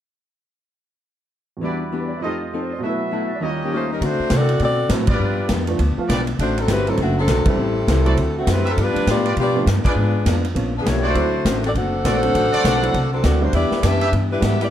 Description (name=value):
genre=jazz, big band swing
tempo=202 BPM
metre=4/4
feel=swing 62% on 8ths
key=D mixolydian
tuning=A4 = 440 Hz
part: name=archtop guitar, miked and amplified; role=accompaniment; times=1.6-14.6 s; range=G2 to A4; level=-28 LUFS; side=left 5 dB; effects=none
part: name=clear baby grand piano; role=accompaniment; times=1.6-14.6 s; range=Eb2 to A5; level=-27 LUFS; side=right 4 dB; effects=none
part: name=bright trumpet section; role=stabs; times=1.6-14.1 s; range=E4 to Bb5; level=-27 LUFS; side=right 1 dB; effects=none
part: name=clear saxophone section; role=melody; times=3.6-14.7 s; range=D3 to F#5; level=-21 LUFS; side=left 1 dB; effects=none
part: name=upright bass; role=bass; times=4.0-14.7 s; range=F#1 to D3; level=-21 LUFS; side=equal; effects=none
part: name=swinging big-band drum kit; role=drums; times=4.0-14.7 s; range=hi-hat, kick drum, ride cymbal, snare drum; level=-24 LUFS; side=equal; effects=none
room=light reverb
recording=dark, warm production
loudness=-17 LUFS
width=side -10 dB against mid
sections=1.6-4.0 A section; 4.0-14.7 B section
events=band accent 5.0, 7.4, 9.8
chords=1.6 Em7; 2.2 F7; 2.8 B7sus4; 3.4 Eb7; 4.0 D7; 5.2 G7; 6.4 D7; 7.6 Am7; 8.2 D7; 8.8 G7; 10.0 G#dim7; 11.1 D7; 13.5 Em7